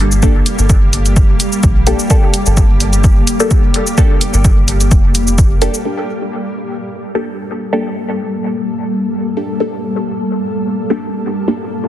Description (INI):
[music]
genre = dub techno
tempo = 128 BPM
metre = 4/4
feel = swing 54% on 16ths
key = G minor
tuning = A4 = 440 Hz
[part]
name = granular cloud pad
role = sustained chords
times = 0.0-11.9 s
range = G3 to A4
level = -19 LUFS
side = left 1 dB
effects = built-in reverb, sidechain pumping
[part]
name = soft dub sub bass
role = bass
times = 0.0-5.7 s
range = F1 to Bb1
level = -14 LUFS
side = equal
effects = sidechain pumping
[part]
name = electronic shaker and hi-hat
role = drums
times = 0.1-5.8 s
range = none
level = -19 LUFS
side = equal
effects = overdrive
[part]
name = filtered dub chord stab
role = stabs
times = 0.2-11.6 s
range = Bb3 to A4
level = -20 LUFS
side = equal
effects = phaser, sidechain pumping, dub echo
[part]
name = electronic kick drum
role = drums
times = 0.2-5.5 s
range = none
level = -11 LUFS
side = equal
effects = overdrive
[sound]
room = digital ambience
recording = dense, heavily limited modern master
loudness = -11 LUFS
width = side -12 dB against mid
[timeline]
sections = 0.0-5.9 A section; 5.9-11.9 B section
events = filter sweep on synth stab 5.9-11.9; filter sweep on ambient pad 5.9-11.9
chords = 0.0 Gmadd9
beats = | 0.23 0.70 1.17 1.63 | 2.10 2.57 3.04 3.51 | 3.98 4.45 4.92 5.38 | 5.85 6.32 6.79 7.26 | 7.73 8.20 8.66 9.13 | 9.60 10.07 10.54 11.01 | 11.48